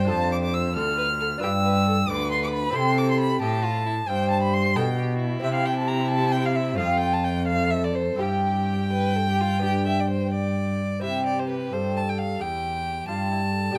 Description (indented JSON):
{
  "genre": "classical, baroque-style sonata movement with continuo",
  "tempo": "89 BPM (dotted quarters)",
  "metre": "12/8",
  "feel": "rubato",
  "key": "C major",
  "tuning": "A4 = 440 Hz",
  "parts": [
    { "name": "warm violin", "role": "melody", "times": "0.0-13.8 s", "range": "E4 to A5", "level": "-32 LUFS", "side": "equal", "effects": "none" },
    { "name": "rich violin", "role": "second line", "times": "0.0-13.8 s", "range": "E4 to F6", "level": "-30 LUFS", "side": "equal", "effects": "none" },
    { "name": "lute", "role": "accompaniment", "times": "0.0-13.8 s", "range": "D2 to B4", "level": "-32 LUFS", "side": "equal", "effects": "none" },
    { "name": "warm cello", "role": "bass", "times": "0.0-13.8 s", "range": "D2 to C3", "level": "-28 LUFS", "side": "equal", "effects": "none" }
  ],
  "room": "light reverb",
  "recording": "close, detailed microphones",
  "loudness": "-24 LUFS",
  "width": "mono",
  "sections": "0.0-11.0 A section; 11.0-13.8 A section",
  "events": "none",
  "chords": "0.1 Dm/F; 1.4 G7; 2.8 C; 6.8 F; 8.2 C/G; 9.6 G; 11.0 C"
}